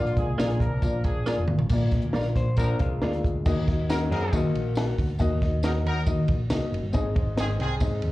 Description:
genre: uptempo 1960s-style soul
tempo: 137 BPM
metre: 4/4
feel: straight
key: Eb dorian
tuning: A4 = 440 Hz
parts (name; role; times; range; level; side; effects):
- warm horn section; second line; 0.0-7.7 s; D3 to Bb4; -32 LUFS; right 1 dB; slapback echo
- dark upright piano; accompaniment; 0.0-8.1 s; Ab2 to Gb5; -30 LUFS; left 3 dB; none
- picked electric bass; bass; 0.0-8.1 s; F1 to Eb3; -27 LUFS; equal; none
- compact cocktail drum kit; drums; 0.1-8.1 s; crash cymbal, hi-hat, kick drum, ride cymbal, snare drum, toms; -27 LUFS; equal; none
- direct-recorded clean electric guitar; stabs; 0.4-3.1 s; Bb3 to Bb4; -34 LUFS; right 3 dB; analog chorus, analog delay, slapback echo
- tambourine; percussion; 0.4-7.9 s; none; -45 LUFS; right 2 dB; none
- electric guitar through a small old amp; riff; 2.4-5.0 s; Ab3 to C5; -32 LUFS; left 4 dB; slapback echo
room: light reverb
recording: live gig heard through the venue's PA, cassette tape, club reverb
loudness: -22 LUFS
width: side -17 dB against mid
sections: 0.0-1.7 A section; 1.7-3.5 B section; 3.5-8.1 C section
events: drum fill 1.3-1.7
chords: 0.0 Bb; 3.5 Ebm; 6.9 Ab

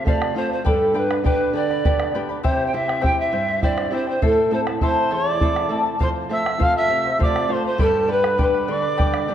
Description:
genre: andean folk, Andean ensemble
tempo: 67 BPM (dotted quarters)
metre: 6/8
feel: straight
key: unclear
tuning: A4 = 441 Hz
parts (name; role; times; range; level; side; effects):
- polished pan flute; melody; 0.0-9.3 s; A4 to G5; -21 LUFS; right 1 dB; slapback echo
- charango; accompaniment; 0.0-9.3 s; E4 to B5; -26 LUFS; left 4 dB; none
- flamenco guitar; accompaniment; 0.0-9.3 s; E2 to G4; -26 LUFS; right 2 dB; none
- bombo; percussion; 0.1-9.3 s; none; -23 LUFS; equal; none
- bright reedy quena; second line; 4.8-9.3 s; A5 to F6; -27 LUFS; right 1 dB; none
room: moderate concert hall reverb, RT60 1.7 s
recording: dark, warm production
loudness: -18 LUFS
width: side -10 dB against mid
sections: 0.0-9.3 A section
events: none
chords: 0.0 F; 0.7 G; 2.4 C; 4.2 Am; 6.0 F; 7.8 G

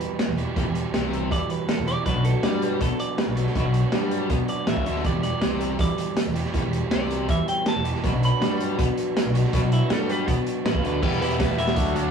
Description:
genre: indie rock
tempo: 161 BPM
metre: 4/4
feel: straight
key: unclear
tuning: A4 = 441 Hz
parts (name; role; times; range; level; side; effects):
- clean electric guitar; melody; 0.0-11.9 s; E4 to B5; -30 LUFS; right 1 dB; none
- crunchy overdriven guitar; riff; 0.0-12.1 s; E2 to G4; -28 LUFS; right 6 dB; none
- vintage drum kit; drums; 0.0-12.0 s; crash cymbal, hi-hat, kick drum, snare drum; -26 LUFS; equal; none
- fuzz guitar; riff; 0.3-12.1 s; E2 to G4; -27 LUFS; left 4 dB; distortion
- picked electric bass; bass; 0.3-12.1 s; E1 to B2; -28 LUFS; right 1 dB; none
- warm trumpet; second line; 11.0-12.1 s; D4 to E4; -34 LUFS; right 6 dB; none
room: moderate small room reverb, RT60 0.5 s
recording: rough rehearsal-room recording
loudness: -21 LUFS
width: side -6 dB against mid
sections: 0.0-11.0 A section; 11.0-12.1 B section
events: clean electric guitar solo 0.0-11.0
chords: 0.0 Em; 2.1 Bm; 5.0 Em7; 8.0 Bm; 11.0 Em

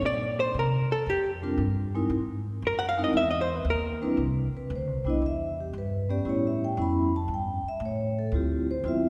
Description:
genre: jazz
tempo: 116 BPM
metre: 4/4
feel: swing 69% on 8ths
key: C major from 4.2 s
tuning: A4 = 440 Hz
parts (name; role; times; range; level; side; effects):
- hollow-body jazz guitar; melody; 0.0-4.1 s; G4 to Gb5; -30 LUFS; equal; none
- upright bass; bass; 0.0-9.1 s; B1 to C3; -32 LUFS; equal; none
- vibraphone with medium mallets; accompaniment; 1.4-9.1 s; G3 to B5; -31 LUFS; equal; none
room: wet concert hall reverb, RT60 2.3 s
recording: recorded in a church or concert hall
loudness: -28 LUFS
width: mono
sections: 0.0-4.2 A section; 4.2-9.1 A section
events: hollow-body jazz guitar solo 0.0-4.2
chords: 0.0 Bbsus2; 2.1 C7alt; 4.2 Cmaj7; 6.3 A7; 8.3 Dm11

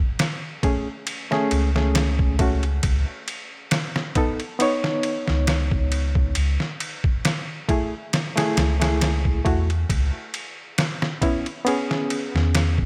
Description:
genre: trip hop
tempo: 68 BPM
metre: 4/4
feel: swing 54% on 16ths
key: unclear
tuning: A4 = 440 Hz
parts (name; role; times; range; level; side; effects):
- trip hop sampler-style drum kit; drums; 0.2-12.9 s; kick drum, ride cymbal, snare drum; -26 LUFS; equal; none
- barky reed electric piano; accompaniment; 0.6-12.9 s; A3 to C#5; -27 LUFS; equal; tremolo, tape echo
- soft dub sub bass; bass; 1.5-12.9 s; C#2 to E2; -24 LUFS; equal; none
room: light reverb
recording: none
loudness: -23 LUFS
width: mono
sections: 0.0-12.9 A section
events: none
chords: 0.0 Amaj7; 2.8 B/C#; 6.4 F#m9/C# (rootless); 9.9 C#m7

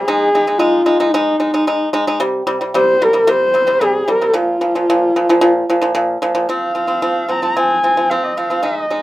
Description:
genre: mongolian traditional, Mongolian folk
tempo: 112 BPM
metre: 4/4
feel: straight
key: F minor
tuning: A4 = 435 Hz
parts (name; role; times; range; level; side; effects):
- warm horsehead fiddle; melody; 0.0-9.0 s; Eb4 to Bb5; -15 LUFS; equal; none
- pipa; arpeggios; 0.0-9.0 s; Bb2 to Eb4; -16 LUFS; equal; none
room: moderate studio ambience, RT60 0.5 s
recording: rough home demo mix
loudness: -13 LUFS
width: side -16 dB against mid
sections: 0.0-6.5 A section; 6.5-9.0 B section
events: none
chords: 0.1 Ab5; 2.2 C5; 4.3 Bb5; 6.5 F5

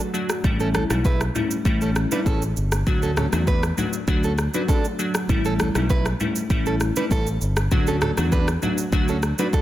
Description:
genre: afrobeats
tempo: 99 BPM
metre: 4/4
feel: straight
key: D major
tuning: A4 = 439 Hz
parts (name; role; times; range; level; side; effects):
- glassy digital keys; accompaniment; 0.0-9.6 s; F#3 to F#4; -25 LUFS; left 1 dB; chorus
- afro-pop drum kit; drums; 0.1-9.6 s; kick drum, rim click, shaker; -24 LUFS; equal; soft clipping on snare
- fingered electric bass; bass; 0.4-9.3 s; G1 to E2; -24 LUFS; equal; none
- congas and bongos; percussion; 0.5-9.6 s; none; -32 LUFS; left 3 dB; none
- nylon-string guitar; riff; 0.6-9.6 s; C#4 to B4; -29 LUFS; right 4 dB; digital delay
room: light reverb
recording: dense, heavily limited modern master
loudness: -19 LUFS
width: side -14 dB against mid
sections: 0.0-9.6 A section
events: none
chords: 0.4 A7; 2.9 D; 5.3 A7; 7.7 D

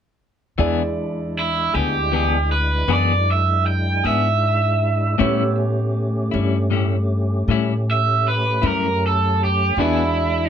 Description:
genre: blues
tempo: 52 BPM (dotted quarters)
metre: 12/8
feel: straight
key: E mixolydian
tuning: A4 = 441 Hz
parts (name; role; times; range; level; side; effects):
- bright concert grand piano; accompaniment; 0.6-10.5 s; G#3 to D5; -26 LUFS; right 5 dB; none
- clean electric guitar; accompaniment; 0.6-10.0 s; A2 to G#4; -22 LUFS; left 10 dB; tremolo
- tonewheel organ; sustained chords; 0.6-10.5 s; G#3 to G4; -27 LUFS; left 1 dB; overdrive, chorus vibrato, slow rotary speaker
- upright bass; bass; 0.6-10.5 s; D2 to A2; -21 LUFS; equal; none
- raw garage guitar; melody; 1.4-10.5 s; E4 to G5; -20 LUFS; right 3 dB; overdrive
room: light reverb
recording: none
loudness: -17 LUFS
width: side -8 dB against mid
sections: 0.6-10.5 A section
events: none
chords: 0.6 E7; 5.2 A7; 9.8 E7

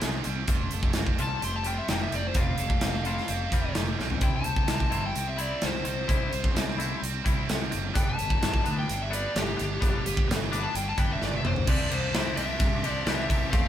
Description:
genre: indie rock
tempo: 129 BPM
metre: 4/4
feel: straight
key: C major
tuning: A4 = 442 Hz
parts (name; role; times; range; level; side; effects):
- high-gain distorted guitar; riff; 0.0-13.7 s; C3 to C5; -34 LUFS; right 7 dB; distortion
- twangy electric guitar; riff; 0.0-13.7 s; E3 to G4; -36 LUFS; left 5 dB; none
- fuzz fingered electric bass; bass; 0.0-13.7 s; F1 to G2; -32 LUFS; equal; overdrive
- big rock drum kit; drums; 0.0-13.6 s; crash cymbal, hi-hat, kick drum, ride cymbal, snare drum, toms; -27 LUFS; equal; none
- fuzz lead guitar; melody; 1.2-13.7 s; G4 to D6; -32 LUFS; left 3 dB; distortion
room: moderate studio ambience, RT60 0.5 s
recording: band playing live in one room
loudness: -25 LUFS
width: side -11 dB against mid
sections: 0.0-11.7 A section; 11.7-13.7 B section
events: lead electric guitar solo 0.0-11.7; drum fill 4.0, 11.2-11.7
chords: 0.5 Fadd9; 4.2 C; 8.0 Gadd9; 11.7 Cadd9

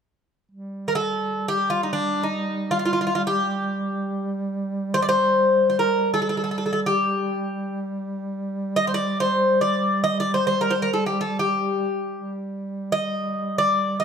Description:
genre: turkish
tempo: free time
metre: none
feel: none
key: G makam ussak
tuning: A4 = 441 Hz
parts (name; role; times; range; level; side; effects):
- warm duduk; drone; 0.5-14.0 s; G3; -28 LUFS; right 2 dB; none
- Greek bouzouki; melody; 0.9-14.0 s; D4 to Eb5; -21 LUFS; left 1 dB; none
room: moderate recital hall reverb, RT60 1.8 s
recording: dark, warm production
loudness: -21 LUFS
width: side -7 dB against mid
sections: 0.5-14.0 A section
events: none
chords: none

